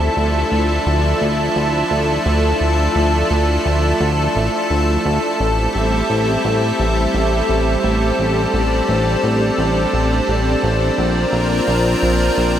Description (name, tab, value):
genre	synthwave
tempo	86 BPM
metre	4/4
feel	straight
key	A phrygian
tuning	A4 = 440 Hz
part	lush unison pad	sustained chords	0.0-12.6 s	F3 to Bb4	-16 LUFS	equal	chorus
part	chorused synth bass	bass	0.0-12.6 s	A1 to D2	-18 LUFS	equal	tube saturation
room	wet lush hall reverb, RT60 2.5 s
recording	bright 1980s-style digital production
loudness	-14 LUFS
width	side -10 dB against mid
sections	0.0-12.6 A section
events	none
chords	0.0 Dmadd9; 5.4 Am7; 11.0 Bbadd9